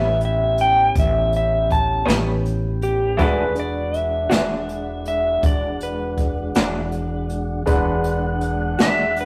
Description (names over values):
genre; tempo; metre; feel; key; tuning
slow blues; 54 BPM (dotted quarters); 12/8; straight; E mixolydian; A4 = 439 Hz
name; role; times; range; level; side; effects
clean lap steel guitar; melody; 0.0-9.3 s; G4 to A5; -23 LUFS; equal; none
clear upright piano; accompaniment; 0.0-9.3 s; G#3 to F#5; -31 LUFS; equal; none
electric guitar through a small old amp; accompaniment; 0.0-9.0 s; A2 to F#4; -26 LUFS; equal; tremolo
mellow tonewheel organ; sustained chords; 0.0-9.3 s; D#3 to F#5; -31 LUFS; equal; slow rotary speaker
upright bass; bass; 0.0-9.3 s; E1 to A1; -27 LUFS; equal; none
jazz brush drum kit; drums; 0.2-9.3 s; hi-hat, kick drum, snare drum; -24 LUFS; equal; none
room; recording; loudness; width
moderate stone room reverb, RT60 1.1 s; rough rehearsal-room recording, tube saturation; -20 LUFS; mono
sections
0.0-9.3 A section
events
none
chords
0.0 A9; 3.2 E9